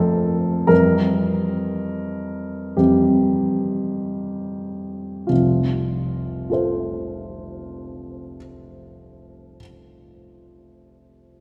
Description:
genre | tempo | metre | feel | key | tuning
classical, romantic character piece for solo piano | 42-64 BPM | 4/4 | rubato | F major | A4 = 440 Hz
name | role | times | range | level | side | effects
warm upright piano | solo | 0.0-11.4 s | F1 to C5 | -22 LUFS | equal | none
room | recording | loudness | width
wet church reverb, RT60 2.8 s | recorded in a church or concert hall | -21 LUFS | mono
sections
0.0-5.3 A section; 5.3-10.1 B section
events
slowing down 0.0-5.3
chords
0.0 F; 0.7 C7/F; 5.3 F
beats
| 0.70 1.69 2.79 3.97 | 5.29 6.49 7.72 8.92

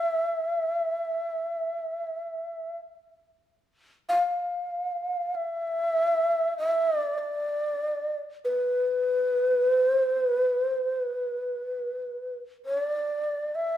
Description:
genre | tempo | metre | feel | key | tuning
japanese traditional, Japanese chamber music | free time | none | none | unclear | A4 = 441 Hz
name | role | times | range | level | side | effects
breathy mellow long shakuhachi | solo | 0.0-13.8 s | B4 to F5 | -25 LUFS | equal | none
room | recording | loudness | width
moderate recital hall reverb, RT60 1.6 s | minimal, uncompressed stereo recording | -25 LUFS | side -11 dB against mid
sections
0.0-4.1 A section; 4.1-13.8 B section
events
none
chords
none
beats
free time

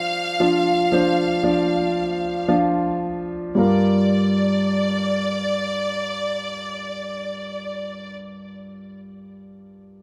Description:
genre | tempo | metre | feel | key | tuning
pop | 55-59 BPM | 4/4 | straight | G minor | A4 = 440 Hz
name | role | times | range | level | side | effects
clear studio violin section | melody | 0.0-8.1 s | D5 to F5 | -28 LUFS | equal | none
warm concert grand piano | accompaniment | 0.0-10.0 s | G2 to D5 | -23 LUFS | equal | none
room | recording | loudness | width
light reverb | none | -21 LUFS | mono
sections
0.0-3.6 A section; 3.6-8.0 B section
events
slowing down 0.0-3.6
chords
0.0 Dm7/F; 3.6 Gm7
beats
0.40 1.44 2.50 | 3.58 4.68 5.78 6.88

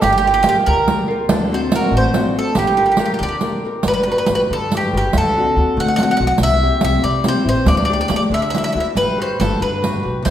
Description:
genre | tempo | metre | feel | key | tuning
italian folk, Italian serenade | 94 BPM (dotted quarters) | 6/8 | rubato | G minor, G major from 3.8 s | A4 = 440 Hz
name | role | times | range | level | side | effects
bowl-back mandolin | melody | 0.0-10.3 s | G4 to F#5 | -19 LUFS | equal | none
mandolin | second line | 0.0-3.6 s | D4 to A4 | -18 LUFS | right 5 dB | none
nylon-string guitar | accompaniment | 0.0-10.3 s | C3 to B4 | -22 LUFS | left 3 dB | none
upright bass | bass | 0.0-10.3 s | G1 to D3 | -22 LUFS | equal | none
riq | percussion | 0.0-10.3 s | none | -21 LUFS | right 2 dB | none
room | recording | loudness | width
wet recital hall reverb, RT60 1.3 s | recorded in a church or concert hall | -14 LUFS | side -10 dB against mid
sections
0.0-3.8 A section; 3.8-10.3 B section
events
none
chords
0.0 Gm7; 1.3 D7; 2.6 Gm7; 3.8 Gmaj7; 5.1 D7; 6.4 C; 7.7 Dsus4; 8.3 Dadd9; 9.0 Gmaj7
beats
| 0.02 0.66 | 1.30 1.92 | 2.56 3.20 | 3.85 4.50 | 5.14 5.77 | 6.40 7.03 | 7.67 8.31 | 8.96 9.60 | 10.24

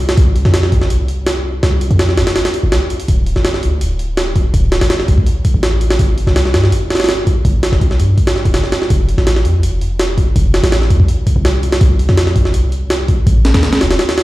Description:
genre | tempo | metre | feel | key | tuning
drum and bass, jungle | 165 BPM | 4/4 | straight | unclear | A4 = 441 Hz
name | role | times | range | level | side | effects
warm 808-style bass | bass | 0.0-14.0 s | D1 to G2 | -14 LUFS | equal | tube saturation
jungle sampler-style drum kit | drums | 0.1-14.2 s | hi-hat, kick drum, snare drum | -13 LUFS | equal | none
room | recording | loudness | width
light reverb | played on a big sound system in a bare room, large studio reverb | -11 LUFS | side -17 dB against mid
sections
0.0-14.2 A section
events
none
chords
none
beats
| 0.17 0.54 0.90 1.26 | 1.63 1.99 2.36 2.72 | 3.08 3.45 3.81 4.17 | 4.54 4.90 5.26 5.63 | 5.99 6.36 6.72 7.08 | 7.45 7.81 8.17 8.54 | 8.90 9.27 9.63 9.99 | 10.36 10.72 11.08 11.45 | 11.81 12.17 12.54 12.90 | 13.27 13.63 13.99

